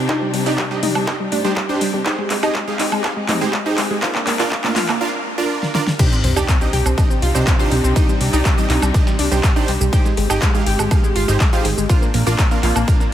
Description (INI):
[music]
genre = progressive house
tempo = 122 BPM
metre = 4/4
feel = straight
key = C minor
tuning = A4 = 439 Hz
[part]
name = rich studio string section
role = sustained chords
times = 0.0-13.1 s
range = C3 to G4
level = -25 LUFS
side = equal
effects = sidechain pumping
[part]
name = analog pluck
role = arpeggios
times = 0.0-13.1 s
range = G3 to G4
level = -23 LUFS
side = equal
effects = chorus, sidechain pumping, tape echo
[part]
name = plucky analog bass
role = bass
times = 0.0-12.8 s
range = G1 to Ab2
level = -20 LUFS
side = equal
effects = sidechain pumping, high-pass filter
[part]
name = supersaw stab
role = stabs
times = 0.1-13.0 s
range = D4 to F5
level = -24 LUFS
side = right 4 dB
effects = sidechain pumping, tape echo
[part]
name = deep house drum kit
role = drums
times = 0.1-13.1 s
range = crash cymbal, handclaps, hi-hat, ride cymbal, shaker, snare drum, woodblock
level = -23 LUFS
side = equal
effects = overdrive, sidechain pumping on hats, sidechain pumping on perc, sidechain pumping on cymbals
[part]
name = electronic kick drum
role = drums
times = 0.1-13.0 s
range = none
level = -17 LUFS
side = equal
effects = high-pass filter on kick, high-pass filter on room
[part]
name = electronic toms and congas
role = percussion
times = 0.8-4.9 s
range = none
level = -26 LUFS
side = right 2 dB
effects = overdrive, sidechain pumping on toms, sidechain pumping on perc
[part]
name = dusty soul sampler-style drum kit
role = drums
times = 6.0-13.1 s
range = hi-hat, snare drum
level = -35 LUFS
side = equal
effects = none
[part]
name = sub drop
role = sound effects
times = 6.0-8.0 s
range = none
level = -26 LUFS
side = left 1 dB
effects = none
[sound]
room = light reverb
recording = none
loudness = -15 LUFS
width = side -11 dB against mid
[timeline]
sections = 0.0-6.0 A section; 6.0-13.1 B section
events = build-up 0.0-6.0; drum fill 0.0-5.0, 5.6-6.0; filter sweep on synth pluck 0.0-6.0; drop 6.0-13.1; impact 6.0-8.0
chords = 0.0 Cmadd9; 2.1 Abmaj7; 4.0 Bbadd9; 6.0 Cmadd9; 9.9 Abmaj7; 11.9 Bbadd9